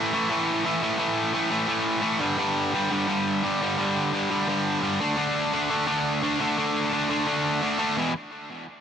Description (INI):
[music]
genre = punk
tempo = 172 BPM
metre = 4/4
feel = straight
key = unclear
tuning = A4 = 441 Hz
[part]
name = distorted electric guitar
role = solo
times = 0.0-8.1 s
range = E2 to D4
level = -23 LUFS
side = equal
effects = overdrive, tape echo
[sound]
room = light reverb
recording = none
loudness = -22 LUFS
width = side -8 dB against mid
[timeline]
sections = 0.0-8.0 A section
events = none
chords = 0.0 A5; 2.2 G5; 5.0 D5; 8.0 E5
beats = 0.30 0.65 | 1.00 1.35 1.70 2.04 | 2.39 2.74 3.09 3.44 | 3.79 4.14 4.49 4.83 | 5.18 5.53 5.88 6.23 | 6.58 6.93 7.28 7.62 | 7.97